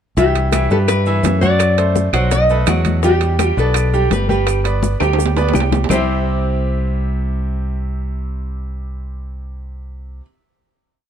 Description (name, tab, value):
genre	latin, salsa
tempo	167 BPM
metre	4/4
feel	straight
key	C major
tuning	A4 = 439 Hz
part	nylon-string guitar	melody	0.2-10.2 s	G4 to D#5	-20 LUFS	left 3 dB	none
part	bright concert grand piano	accompaniment	0.2-10.2 s	C3 to G5	-21 LUFS	right 3 dB	none
part	fingered electric bass	bass	0.2-10.2 s	G1 to G2	-18 LUFS	equal	none
part	bongos	percussion	0.2-6.0 s	none	-26 LUFS	left 9 dB	none
part	congas	percussion	0.2-6.0 s	none	-24 LUFS	left 5 dB	none
part	maracas	percussion	0.2-6.0 s	none	-32 LUFS	right 10 dB	none
part	timbales	percussion	0.4-6.0 s	none	-23 LUFS	right 9 dB	none
part	claves	percussion	0.5-6.0 s	none	-30 LUFS	left 3 dB	none
room	light reverb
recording	dark, warm production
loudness	-14 LUFS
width	side -9 dB against mid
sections	0.2-5.9 verse; 5.9-8.8 final chord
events	drum fill 4.8-5.9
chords	0.2 Cmaj7; 1.6 F#dim; 2.3 B7; 3.0 Em7; 4.5 G; 5.9 C